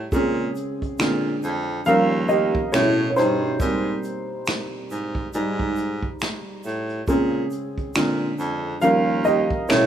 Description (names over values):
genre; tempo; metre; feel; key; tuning
lo-fi hip hop; 69 BPM; 4/4; swing 59% on 16ths; unclear; A4 = 439 Hz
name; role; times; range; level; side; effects
dark upright piano; accompaniment; 0.0-9.9 s; B2 to F5; -22 LUFS; right 1 dB; low-pass filter
warm baritone saxophone; bass; 0.0-9.9 s; Eb2 to Bb2; -25 LUFS; right 1 dB; none
vintage brush drum kit; drums; 0.1-9.9 s; finger snaps, hi-hat, kick drum, snare drum; -28 LUFS; right 1 dB; none
egg shaker; percussion; 0.1-9.9 s; none; -47 LUFS; right 8 dB; none
room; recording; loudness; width
light reverb, studio ambience; rough home demo mix, small room ambience; -20 LUFS; side -9 dB against mid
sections
0.0-9.9 A section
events
upright piano solo 0.0-9.9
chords
0.1 Bbm7; 1.0 Bb7; 1.9 Eb7; 2.7 Amaj9; 3.6 Abmaj9; 5.3 Abmaj7; 7.1 Bbm7; 7.9 Bb7; 8.8 Eb7